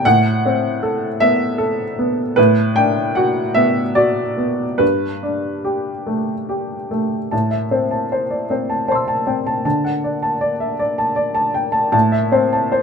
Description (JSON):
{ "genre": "neoclassical minimalist piano", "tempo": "47-53 BPM (dotted quarters)", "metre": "6/8", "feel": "rubato", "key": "A dorian", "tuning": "A4 = 440 Hz", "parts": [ { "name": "clear upright piano", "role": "solo", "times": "0.0-12.8 s", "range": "G2 to E6", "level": "-16 LUFS", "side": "equal", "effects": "none" } ], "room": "light reverb", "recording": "minimal, uncompressed stereo recording", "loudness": "-16 LUFS", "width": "side -5 dB against mid", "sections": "0.0-7.3 A section; 7.3-12.8 B section", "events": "none", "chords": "0.1 Amadd9; 2.4 Bm/A; 4.8 Gadd9; 7.3 Am; 9.6 D; 11.9 Am" }